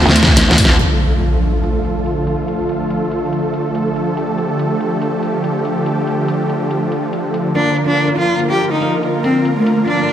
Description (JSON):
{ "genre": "heavy wobble dubstep", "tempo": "142 BPM", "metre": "4/4", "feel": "half-time", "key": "D minor", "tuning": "A4 = 438 Hz", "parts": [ { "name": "supersaw chords", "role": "sustained chords", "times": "0.0-10.1 s", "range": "D3 to C5", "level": "-17 LUFS", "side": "right 1 dB", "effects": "sidechain pumping, low-pass filter" }, { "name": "metallic wobble bass", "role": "bass", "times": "0.0-0.8 s", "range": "D2", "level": "-14 LUFS", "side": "equal", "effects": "distortion, chorus, overdrive" }, { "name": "metallic wobble bass", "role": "bass", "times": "0.1-0.7 s", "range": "D2", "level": "-13 LUFS", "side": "equal", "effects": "distortion, chorus, overdrive" }, { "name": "dubstep drum kit", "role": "drums", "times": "0.1-10.1 s", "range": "hi-hat, snare drum", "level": "-15 LUFS", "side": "left 1 dB", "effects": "low-pass filter on hats, low-pass filter on snare, low-pass filter on room" }, { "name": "electronic kick drum", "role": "drums", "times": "0.3-0.7 s", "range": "none", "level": "-15 LUFS", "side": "equal", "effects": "none" }, { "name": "impact", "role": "sound effects", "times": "0.8-2.5 s", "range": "none", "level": "-19 LUFS", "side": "equal", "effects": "none" }, { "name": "warm cello", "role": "melody", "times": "7.6-10.1 s", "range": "A3 to G4", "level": "-15 LUFS", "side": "left 1 dB", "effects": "tape echo" } ], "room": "moderate lush hall reverb, RT60 2.5 s", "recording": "none", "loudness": "-14 LUFS", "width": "side -10 dB against mid", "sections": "0.8-10.1 A section", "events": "drum fill 0.0-0.8; band accent 0.7; impact 0.8-2.5; filter sweep on supersaw synth 0.8-10.1", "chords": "0.0 Dm; 7.6 Bb" }